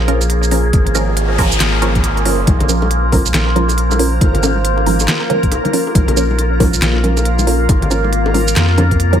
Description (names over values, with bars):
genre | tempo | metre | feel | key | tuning
deep dubstep | 138 BPM | 4/4 | swing 61% on 16ths, half-time | Bb minor | A4 = 440 Hz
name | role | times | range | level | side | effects
overtone-sweeping drone | sustained chords | 0.0-9.2 s | Bb3 to F5 | -20 LUFS | equal | chorus, built-in reverb, phaser
soft dub sub bass | bass | 0.0-9.2 s | Ab1 to F2 | -16 LUFS | equal | none
filtered dub chord stab | stabs | 0.1-9.2 s | F3 to Bb4 | -20 LUFS | right 2 dB | phaser, dub echo
dubstep drum kit | drums | 0.1-9.2 s | handclaps, hi-hat, shaker, snare drum | -20 LUFS | right 1 dB | none
electronic kick drum | drums | 0.7-9.0 s | none | -14 LUFS | equal | overdrive
noise sweep | sound effects | 0.9-2.5 s | none | -24 LUFS | equal | none
congas and bongos | percussion | 2.5-9.2 s | none | -23 LUFS | left 3 dB | dub echo
backwards swelling texture | texture | 3.1-9.2 s | Bb3 to Bb4 | -24 LUFS | left 2 dB | built-in reverb
room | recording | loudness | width
light reverb, digital ambience | none | -12 LUFS | side -9 dB against mid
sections
0.0-9.2 A section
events
noise sweep 0.9-2.5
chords
0.0 Bbm